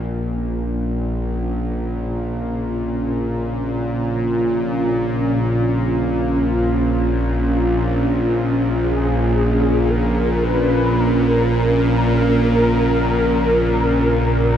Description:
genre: dark ambient drone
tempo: free time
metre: none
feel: none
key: Bb minor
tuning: A4 = 440 Hz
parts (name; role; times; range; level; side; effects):
- sweeping resonant pad; sustained chords; 0.0-14.6 s; Db4 to Bb5; -22 LUFS; equal; chorus
- bowed-like drone; drone; 0.0-14.6 s; Bb1 to Bb2; -19 LUFS; equal; built-in reverb
- mellow horn-like synth lead; melody; 8.8-14.6 s; Ab4 to Cb5; -20 LUFS; left 1 dB; ensemble chorus, diffuse ambient delay
room: wet cathedral reverb, RT60 6.0 s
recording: in a vast, echoing space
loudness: -16 LUFS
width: side -9 dB against mid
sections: 0.1-14.6 A section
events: none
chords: 0.1 Bbm

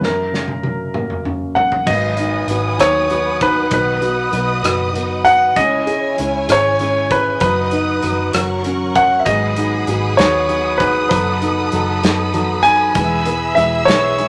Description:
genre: six-eight pop ballad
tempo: 65 BPM (dotted quarters)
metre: 6/8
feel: straight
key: B major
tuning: A4 = 440 Hz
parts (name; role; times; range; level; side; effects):
- clear concert grand piano; melody; 0.0-14.3 s; A#4 to G#5; -18 LUFS; equal; none
- felt-muted upright piano; accompaniment; 0.0-14.3 s; F#2 to A#4; -26 LUFS; equal; none
- loose indie drum kit; drums; 0.0-14.3 s; crash cymbal, hi-hat, kick drum, rim click, snare drum, toms; -24 LUFS; equal; none
- warm studio string section; sustained chords; 1.9-14.3 s; E4 to E6; -24 LUFS; equal; none
- fingerpicked plugged-in steel-string acoustic guitar; arpeggios; 1.9-14.3 s; G#2 to B4; -27 LUFS; equal; none
- vintage muted fingered electric bass; bass; 1.9-14.3 s; E1 to F#2; -27 LUFS; equal; none
room: wet studio ambience, RT60 0.5 s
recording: none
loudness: -16 LUFS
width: mono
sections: 0.0-1.9 A section; 1.9-14.3 B section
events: drum fill 0.0-1.9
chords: 0.0 F#; 1.9 G#m7; 3.7 B; 5.6 C#m; 7.4 B/F#; 8.3 F#; 9.3 G#m7; 11.1 B7/F#; 13.0 E

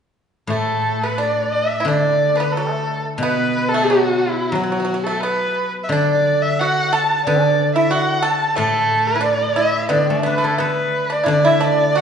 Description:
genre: chinese traditional, Chinese chamber ensemble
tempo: 89 BPM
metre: 2/4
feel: rubato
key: D gong mode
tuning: A4 = 440 Hz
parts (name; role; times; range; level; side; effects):
- dark erhu; melody; 0.5-12.0 s; E4 to A5; -18 LUFS; equal; none
- pipa; second line; 0.5-12.0 s; F#3 to A4; -22 LUFS; right 2 dB; none
- guzheng; accompaniment; 0.5-12.0 s; A2 to A4; -22 LUFS; left 1 dB; none
room: wet recital hall reverb, RT60 1.6 s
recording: heard from further back in the room, nothing above 10.9 kHz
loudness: -16 LUFS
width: side -7 dB against mid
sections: 0.5-11.3 A section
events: none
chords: none

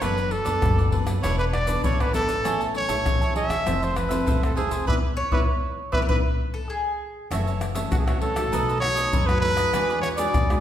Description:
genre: samba and choro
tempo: 99 BPM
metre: 4/4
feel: straight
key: F# minor from 7.3 s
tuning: A4 = 440 Hz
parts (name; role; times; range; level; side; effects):
- clear trumpet; melody; 0.0-10.6 s; F#4 to E5; -26 LUFS; equal; none
- cavaquinho; accompaniment; 0.0-10.6 s; D4 to A5; -30 LUFS; right 4 dB; none
- nylon-string guitar; accompaniment; 0.0-10.6 s; F#2 to A4; -31 LUFS; left 2 dB; none
- upright bass; bass; 0.0-10.6 s; E1 to F#2; -28 LUFS; equal; none
- egg shaker, surdo, pandeiro and tamborim; percussion; 0.0-10.6 s; none; -26 LUFS; left 1 dB; none
- mandolin; second line; 5.2-7.3 s; G#4 to C#5; -30 LUFS; left 1 dB; none
room: wet recital hall reverb, RT60 1.3 s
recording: recorded in a church or concert hall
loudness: -21 LUFS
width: side -10 dB against mid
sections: 0.0-7.3 A section; 7.3-10.6 B section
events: band accent 4.9-7.3; drum fill 6.9-7.3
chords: 0.0 Bm7/F#; 1.2 E7sus4; 2.5 Amaj7; 3.7 Fmaj7; 4.9 E7; 7.3 F#m7; 8.5 B7; 9.7 E9

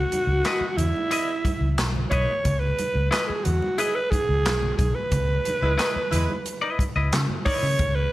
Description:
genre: funk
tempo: 90 BPM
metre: 4/4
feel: straight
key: C# minor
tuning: A4 = 441 Hz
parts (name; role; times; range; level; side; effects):
- breathy alto saxophone; melody; 0.0-8.1 s; E4 to C#5; -25 LUFS; right 1 dB; slapback echo, plate reverb
- vintage muted fingered electric bass; bass; 0.0-8.1 s; B1 to C#3; -24 LUFS; equal; none
- swinging big-band drum kit; drums; 0.1-8.0 s; handclaps, hi-hat, kick drum, snare drum; -28 LUFS; equal; none
- congas; percussion; 0.1-8.0 s; none; -34 LUFS; right 2 dB; none
- semi-hollow electric guitar; accompaniment; 0.5-7.7 s; E4 to D#5; -28 LUFS; left 3 dB; plate reverb
- warm horn section; second line; 5.6-6.3 s; G#3 to B4; -31 LUFS; equal; plate reverb
room: light reverb, studio reverb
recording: none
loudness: -21 LUFS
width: side -16 dB against mid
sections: 0.0-8.1 A section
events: band accent 5.1-7.8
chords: 0.0 C#m9

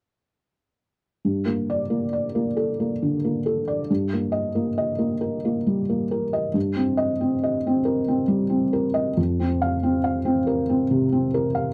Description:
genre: neoclassical minimalist piano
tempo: 46 BPM (dotted quarters)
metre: 6/8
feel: rubato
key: G minor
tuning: A4 = 441 Hz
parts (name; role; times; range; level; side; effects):
- felt-muted upright piano; solo; 1.2-11.7 s; F2 to F5; -23 LUFS; equal; none
room: light reverb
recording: dry, close 1970s-style studio recording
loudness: -23 LUFS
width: mono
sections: 1.2-11.7 A section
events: none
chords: 1.2 Gmadd9; 3.9 Eb/G; 6.5 Cm7/G; 9.2 Fsus4

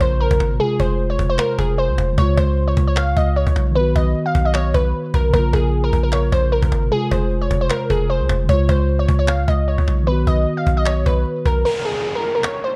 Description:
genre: hip hop, trap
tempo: 152 BPM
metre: 4/4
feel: half-time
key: unclear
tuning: A4 = 441 Hz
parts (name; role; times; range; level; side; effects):
- glassy wavetable pluck; melody; 0.0-12.8 s; Ab4 to F5; -23 LUFS; equal; chorus, low-pass filter
- mellow tine electric piano; accompaniment; 0.0-11.7 s; C3 to F#4; -25 LUFS; equal; low-pass filter
- long sustained 808-style bass; bass; 0.0-11.6 s; F1 to Db2; -21 LUFS; equal; none
- cajon; drums; 0.0-12.5 s; none; -26 LUFS; equal; none
- impact and downlifter; sound effects; 0.0-0.6, 11.7-12.8 s; none; -32 LUFS; equal; none
room: digital ambience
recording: worn, warbling old tape, cassette tape, warbly pitch drift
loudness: -18 LUFS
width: mono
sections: 0.0-11.7 A section; 11.7-12.8 B section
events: impact 0.0-0.6; break 11.7-12.8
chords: 0.0 Bbm; 0.6 Fm; 2.2 Db; 3.8 B; 5.3 Bbm; 6.9 Fm; 8.5 Db; 10.1 B; 11.7 N.C.

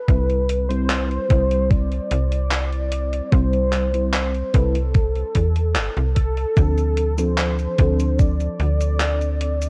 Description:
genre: vaporwave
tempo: 74 BPM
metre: 4/4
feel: straight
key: C major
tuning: A4 = 440 Hz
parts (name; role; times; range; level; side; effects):
- warm velvety synth lead; melody; 0.0-9.7 s; A4 to D5; -28 LUFS; equal; chorus, tape echo
- mellow FM electric piano; accompaniment; 0.1-9.7 s; F3 to C5; -28 LUFS; equal; tremolo, analog chorus, vintage 12-bit sampler grit
- slap-like FM bass; bass; 0.1-9.7 s; G1 to E2; -24 LUFS; equal; tube saturation
- electronic kick drum; drums; 0.1-8.4 s; none; -20 LUFS; equal; overdrive
- gated 80s digital drum machine; drums; 0.1-9.7 s; cabasa, handclaps, hi-hat; -29 LUFS; equal; gated reverb, overdrive
room: little or no reverb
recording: worn, warbling old tape, cassette tape, warbly pitch drift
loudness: -20 LUFS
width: mono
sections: 0.0-9.7 A section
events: none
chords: 0.1 C; 6.6 Dm7

